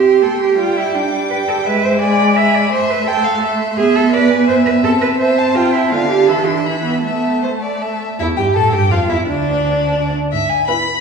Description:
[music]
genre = quick classical-period movement for string quartet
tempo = 168 BPM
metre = 3/4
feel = rubato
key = A minor from 3.8 s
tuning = A4 = 439 Hz
[part]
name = warm violin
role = melody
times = 0.0-11.0 s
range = D5 to D6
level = -22 LUFS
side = left 5 dB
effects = none
[part]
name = rich violin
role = second line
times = 0.0-10.9 s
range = D4 to A5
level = -20 LUFS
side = equal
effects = none
[part]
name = rich viola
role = accompaniment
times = 0.0-10.9 s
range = D3 to A4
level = -18 LUFS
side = equal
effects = none
[part]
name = clear cello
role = bass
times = 0.0-10.6 s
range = D2 to E5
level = -16 LUFS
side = right 4 dB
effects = none
[sound]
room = wet recital hall reverb, RT60 1.4 s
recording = recorded in a church or concert hall, studio reverb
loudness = -13 LUFS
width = side -5 dB against mid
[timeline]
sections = 0.0-8.2 A section; 8.2-11.0 B section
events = none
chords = 0.0 C5; 0.6 G7(no3); 1.7 E7/G#; 2.7 Am; 3.8 E7/B; 4.8 Am/C; 5.9 Dmadd11; 6.3 Am/E; 6.7 E5; 7.0 A5; 8.2 A5/E; 9.3 N.C.; 10.3 E/G#

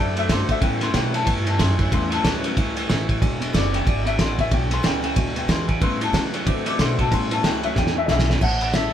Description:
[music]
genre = rockabilly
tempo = 185 BPM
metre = 4/4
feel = swing 60% on 8ths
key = A mixolydian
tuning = A4 = 440 Hz
[part]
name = picked acoustic archtop guitar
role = accompaniment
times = 0.0-8.9 s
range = E2 to F#4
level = -32 LUFS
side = left 4 dB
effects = none
[part]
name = warm upright piano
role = accompaniment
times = 0.0-8.9 s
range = C#3 to D6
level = -26 LUFS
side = left 5 dB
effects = none
[part]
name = electric guitar through a small old amp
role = riff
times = 0.0-8.4 s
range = E2 to A3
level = -27 LUFS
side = right 2 dB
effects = warbly pitch drift
[part]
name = upright bass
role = bass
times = 0.0-8.9 s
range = E1 to D3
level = -25 LUFS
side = right 1 dB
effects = none
[part]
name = cloth-damped thuddy drum kit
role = drums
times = 0.2-8.8 s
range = crash cymbal, kick drum, ride cymbal, snare drum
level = -22 LUFS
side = right 1 dB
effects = none
[part]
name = electric guitar through a small old amp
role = melody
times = 8.4-8.9 s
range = E5 to F#5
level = -24 LUFS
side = equal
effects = none
[sound]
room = light reverb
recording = band playing live in one room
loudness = -18 LUFS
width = side -10 dB against mid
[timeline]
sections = 0.0-8.4 A section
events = upright piano solo 0.0-8.4; drum fill 7.8-8.4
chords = 0.0 D7; 0.6 A7; 3.2 E7; 5.8 A7; 6.5 D7; 7.1 A7; 7.8 E7; 8.4 A7

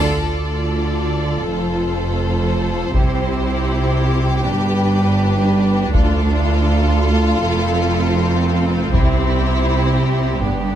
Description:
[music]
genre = cinematic, epic orchestral film score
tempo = 80 BPM (dotted quarters)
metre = 6/8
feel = straight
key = unclear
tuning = A4 = 438 Hz
[part]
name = warm symphonic violin section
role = melody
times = 0.0-10.8 s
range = G4 to D5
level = -27 LUFS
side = left 1 dB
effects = none
[part]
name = rich studio violin section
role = second line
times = 0.0-10.8 s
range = D4 to A4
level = -23 LUFS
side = left 2 dB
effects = none
[part]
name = rich symphonic viola section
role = accompaniment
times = 0.0-10.8 s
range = B3 to F4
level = -25 LUFS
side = left 1 dB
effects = none
[part]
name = rich symphonic double bass section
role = bass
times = 0.0-10.8 s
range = F1 to D2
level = -19 LUFS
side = right 2 dB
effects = none
[part]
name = warm symphonic cello section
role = bass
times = 0.0-10.8 s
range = D2 to D3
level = -20 LUFS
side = right 2 dB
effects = none
[part]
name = taiko ensemble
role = drums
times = 3.0-9.9 s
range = none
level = -20 LUFS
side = equal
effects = none
[sound]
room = light reverb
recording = close, detailed microphones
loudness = -15 LUFS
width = side -10 dB against mid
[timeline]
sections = 0.0-10.8 A section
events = build-up 0.0-10.8; band accent 0.0-0.5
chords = 0.0 Dm; 1.5 F; 3.0 C; 4.5 G; 5.9 Dm; 7.4 F; 8.9 C

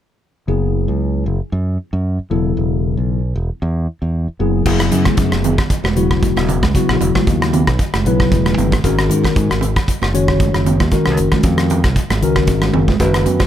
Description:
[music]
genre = electric jazz fusion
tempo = 115 BPM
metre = 4/4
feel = swing 55% on 16ths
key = unclear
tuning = A4 = 440 Hz
[part]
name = tine electric piano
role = accompaniment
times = 0.5-13.5 s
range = C#3 to C#5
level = -18 LUFS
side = left 3 dB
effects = analog chorus
[part]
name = modern bright fingered electric bass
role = bass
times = 0.5-13.4 s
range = E1 to G#2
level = -18 LUFS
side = equal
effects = none
[part]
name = modern studio drum kit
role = drums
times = 4.7-13.5 s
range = crash cymbal, hi-hat, kick drum, rim click, toms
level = -18 LUFS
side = equal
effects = none
[part]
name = congas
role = percussion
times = 4.9-13.5 s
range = none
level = -22 LUFS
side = right 6 dB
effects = none
[sound]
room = light reverb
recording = none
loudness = -14 LUFS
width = side -11 dB against mid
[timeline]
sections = 0.5-4.7 A section; 4.7-13.5 B section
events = drum fill 12.7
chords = 0.5 F#9sus4; 2.3 Esus24; 4.4 F#9sus4; 8.8 G#9sus4

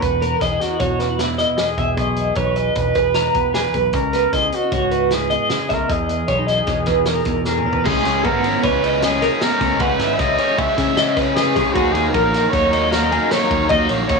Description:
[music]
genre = math rock and midwest emo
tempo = 153 BPM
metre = 5/4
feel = straight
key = unclear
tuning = A4 = 437 Hz
[part]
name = warm trumpet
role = melody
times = 0.0-14.2 s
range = E4 to E5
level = -21 LUFS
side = right 2 dB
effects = cassette tape, plate reverb
[part]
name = semi-hollow electric guitar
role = accompaniment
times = 0.0-7.9 s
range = E2 to G#4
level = -26 LUFS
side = right 8 dB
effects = lush chorus, cassette tape, plate reverb
[part]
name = twelve-string electric guitar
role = arpeggios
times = 0.0-14.2 s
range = B3 to A#5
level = -21 LUFS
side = left 2 dB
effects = tremolo, cassette tape, plate reverb, analog delay
[part]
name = growling picked electric bass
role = bass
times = 0.0-14.2 s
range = E1 to C#3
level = -24 LUFS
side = left 2 dB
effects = overdrive
[part]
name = loose indie drum kit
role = drums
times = 0.0-14.2 s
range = crash cymbal, hi-hat, kick drum, ride cymbal, snare drum, toms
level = -25 LUFS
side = equal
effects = cassette tape
[part]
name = overdriven semi-hollow guitar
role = riff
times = 7.8-14.2 s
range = C#3 to E4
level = -21 LUFS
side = right 1 dB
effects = cassette tape
[sound]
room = moderate studio reverb, RT60 0.5 s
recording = home recording on cassette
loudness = -15 LUFS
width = side -3 dB against mid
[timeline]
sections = 0.0-7.8 A section; 7.8-14.2 B section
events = drum fill 7.5-7.8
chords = 0.0 Emaj7; 3.9 C#m7; 5.9 Emaj7; 7.8 C#m9; 11.8 D#m7

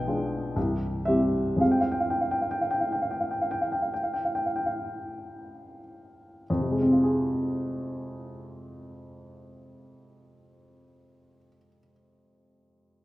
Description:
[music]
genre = classical, romantic nocturne for solo piano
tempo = 41-64 BPM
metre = 4/4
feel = rubato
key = F minor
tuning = A4 = 440 Hz
[part]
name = warm upright piano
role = solo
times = 0.0-13.0 s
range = C1 to G5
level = -25 LUFS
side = equal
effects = none
[sound]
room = wet recital hall reverb, RT60 1.4 s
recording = none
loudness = -24 LUFS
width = side -16 dB against mid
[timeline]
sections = 0.0-6.5 A section; 6.5-12.2 B section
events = slowing down 0.0-6.5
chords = 0.0 Bdim7; 0.6 C; 1.6 Fm

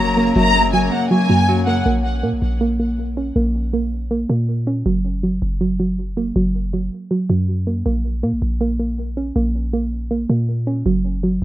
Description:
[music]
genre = hip hop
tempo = 160 BPM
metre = 4/4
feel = half-time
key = Bb minor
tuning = A4 = 440 Hz
[part]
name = warm studio violin section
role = second line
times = 0.0-1.9 s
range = Gb5 to Bb5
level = -19 LUFS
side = equal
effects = digital delay
[part]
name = Celtic harp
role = accompaniment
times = 0.0-4.5 s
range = Gb2 to Db4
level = -23 LUFS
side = left 5 dB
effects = low-pass filter
[part]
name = granular cloud pad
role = sustained chords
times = 0.0-1.8 s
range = Gb3 to Bb4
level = -28 LUFS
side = equal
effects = built-in reverb
[part]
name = soft round pluck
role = arpeggios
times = 0.0-11.4 s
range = Gb3 to Db4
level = -20 LUFS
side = right 2 dB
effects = chorus, low-pass filter, digital delay
[part]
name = warm 808-style bass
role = bass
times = 0.0-11.4 s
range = Gb1 to Bb2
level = -21 LUFS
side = equal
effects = none
[sound]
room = light reverb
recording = rough home demo mix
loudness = -17 LUFS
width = side -14 dB against mid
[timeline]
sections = 0.0-1.9 A section; 1.9-11.4 B section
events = none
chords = 0.0 Gb; 1.9 Bbm; 4.9 Gb; 7.9 Bbm; 10.9 N.C.

